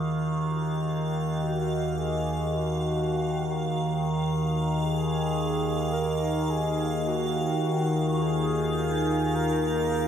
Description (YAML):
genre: dark ambient drone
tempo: free time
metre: none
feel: none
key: Eb minor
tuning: A4 = 442 Hz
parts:
  - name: overtone-sweeping drone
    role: drone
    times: 0.0-10.1 s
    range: Eb2 to Eb3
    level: -26 LUFS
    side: equal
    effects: chorus, built-in reverb
  - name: icy glass pad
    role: texture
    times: 0.0-10.1 s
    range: F5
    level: -35 LUFS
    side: right 2 dB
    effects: chorus, built-in reverb, tremolo, shimmer reverb
  - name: mellow horn-like synth lead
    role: melody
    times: 1.4-10.1 s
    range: Gb4 to Bb4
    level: -32 LUFS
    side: equal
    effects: chorus, shimmer reverb, diffuse ambient delay
  - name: dark analog pad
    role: sustained chords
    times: 5.3-10.1 s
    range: Eb4 to F5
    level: -31 LUFS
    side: right 1 dB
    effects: chorus, shimmer reverb
room: wet cathedral reverb, RT60 7.0 s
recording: none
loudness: -24 LUFS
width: side -9 dB against mid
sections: 0.0-10.1 A section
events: none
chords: 0.0 Ebmadd9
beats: free time